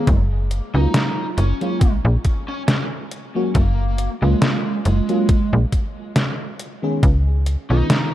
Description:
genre	vaporwave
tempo	69 BPM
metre	4/4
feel	swing 54% on 16ths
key	F# major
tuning	A4 = 440 Hz
part	lead guitar through a small cranked amp	melody	0.0-8.1 s	G#3 to D#4	-27 LUFS	right 2 dB	overdrive, vintage 12-bit sampler grit, tape echo
part	FM electric piano with soft pad layer	accompaniment	0.0-8.1 s	D#3 to G#4	-25 LUFS	left 1 dB	wide subtle chorus, tape echo
part	slap-like FM bass	bass	0.1-7.8 s	F#1 to C#2	-17 LUFS	equal	none
part	detuned 8-bit digital drum machine	drums	0.1-8.1 s	hi-hat, snare drum	-20 LUFS	equal	none
part	electronic kick drum	drums	0.1-7.2 s	none	-17 LUFS	equal	none
room	little or no reverb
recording	dark, warm production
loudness	-17 LUFS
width	side -13 dB against mid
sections	0.0-8.1 A section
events	none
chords	0.1 F#maj9; 6.6 C#7

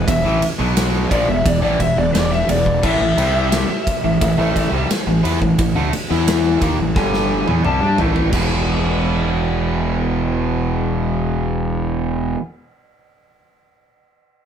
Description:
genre	classic rock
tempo	87 BPM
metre	4/4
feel	straight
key	E mixolydian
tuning	A4 = 440 Hz
part	overdriven slide guitar	melody	0.0-8.0 s	D5 to A5	-20 LUFS	left 1 dB	none
part	crunchy overdriven guitar	riff	0.0-12.4 s	E2 to G#4	-22 LUFS	left 7 dB	phaser
part	overdriven electric guitar	riff	0.0-12.4 s	E2 to E4	-22 LUFS	right 8 dB	none
part	fuzz fingered electric bass	bass	0.0-12.3 s	E1 to G2	-21 LUFS	equal	overdrive
part	big rock drum kit	drums	0.1-8.5 s	crash cymbal, kick drum, ride cymbal, snare drum, toms	-21 LUFS	equal	none
room	moderate studio reverb, RT60 0.6 s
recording	band playing live in one room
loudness	-15 LUFS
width	side -8 dB against mid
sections	0.0-8.3 A section; 8.3-11.1 B section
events	electric slide guitar solo 0.0-8.3; drum fill 7.0-8.3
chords	0.0 E5; 2.8 A5; 8.3 E

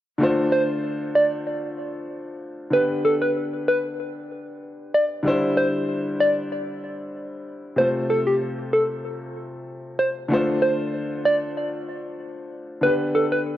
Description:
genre	dancehall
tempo	95 BPM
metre	4/4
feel	straight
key	D dorian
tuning	A4 = 441 Hz
part	clear baby grand piano	accompaniment	0.2-13.6 s	C3 to C5	-26 LUFS	left 1 dB	none
part	soft struck synth lead	melody	0.5-13.4 s	G4 to D5	-22 LUFS	equal	chorus, tape echo
room	moderate lush hall reverb, RT60 2.7 s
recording	worn, warbling old tape, cassette tape, warbly pitch drift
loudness	-20 LUFS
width	side -13 dB against mid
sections	0.2-13.6 A section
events	none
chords	0.2 Dm7; 2.7 G; 5.3 Cadd9; 7.8 F; 10.3 Dm7; 12.8 G

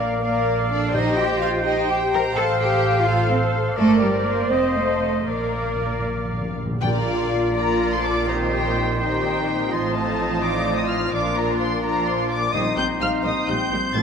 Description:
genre	quick classical-period movement for symphony orchestra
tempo	84 BPM (dotted quarters)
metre	6/8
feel	rubato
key	Bb major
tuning	A4 = 438 Hz
part	muted studio violin section	melody	0.0-14.0 s	D5 to A6	-29 LUFS	left 2 dB	none
part	clear clarinet	second line	0.0-14.0 s	Eb4 to D5	-30 LUFS	left 2 dB	none
part	mellow large flute ensemble	second line	0.0-14.0 s	F4 to A5	-28 LUFS	equal	none
part	muted studio violin section	second line	0.0-14.0 s	C4 to Bb5	-30 LUFS	left 2 dB	none
part	warm oboe	second line	0.0-14.0 s	C5 to G5	-30 LUFS	equal	none
part	muted studio viola section	accompaniment	0.0-14.0 s	Eb3 to Eb5	-28 LUFS	equal	none
part	dark French horn section	sustained chords	0.0-14.0 s	Bb3 to F5	-29 LUFS	left 4 dB	none
part	muted studio cello section	bass	0.0-14.0 s	A2 to Bb4	-26 LUFS	right 2 dB	none
part	muted studio double bass section	bass	0.0-14.0 s	F1 to Bb1	-28 LUFS	right 3 dB	none
part	timpani	percussion	0.9-1.6, 5.3-7.5, 12.5-13.2 s	Bb2	-30 LUFS	equal	none
room	wet scoring stage reverb, RT60 1.8 s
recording	none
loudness	-19 LUFS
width	side -6 dB against mid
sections	0.0-6.8 A section; 6.8-14.0 B section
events	timpani fill 5.3-6.8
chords	0.0 Bb; 0.9 Cm7/Bb; 2.4 F/A; 3.8 Gm; 4.5 F7; 5.3 Bb; 8.3 Cm7/Bb; 9.7 F7/A; 11.1 Bb; 12.5 Cm7/Bb

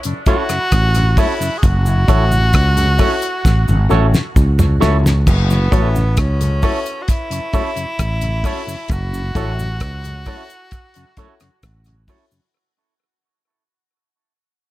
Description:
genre	roots reggae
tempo	66 BPM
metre	4/4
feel	straight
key	F# minor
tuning	A4 = 440 Hz
part	mellow tonewheel organ	accompaniment	0.0-12.4 s	F#2 to E4	-25 LUFS	left 2 dB	slow rotary speaker
part	damped 70s drum kit	drums	0.0-12.3 s	crash cymbal, hi-hat, kick drum, rim click, snare drum, toms	-17 LUFS	equal	tape echo
part	cabasa	percussion	0.0-12.5 s	none	-36 LUFS	right 1 dB	none
part	edgy tenor saxophone	melody	0.3-12.1 s	B3 to G#4	-23 LUFS	equal	dub echo
part	electric guitar with an envelope filter	accompaniment	0.3-12.2 s	C#4 to C#5	-26 LUFS	right 8 dB	spring reverb, dub echo
part	warm upright piano	stabs	0.3-12.3 s	E4 to C#5	-24 LUFS	left 6 dB	none
part	sustaining fretless electric bass	bass	0.7-12.1 s	F#1 to C#2	-15 LUFS	equal	none
room	small room ambience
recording	echo-heavy mix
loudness	-13 LUFS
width	side -16 dB against mid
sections	0.0-5.3 A section; 5.3-12.5 B section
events	drum fill 3.5-5.3; fade-out 5.3-12.5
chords	0.0 F#m7

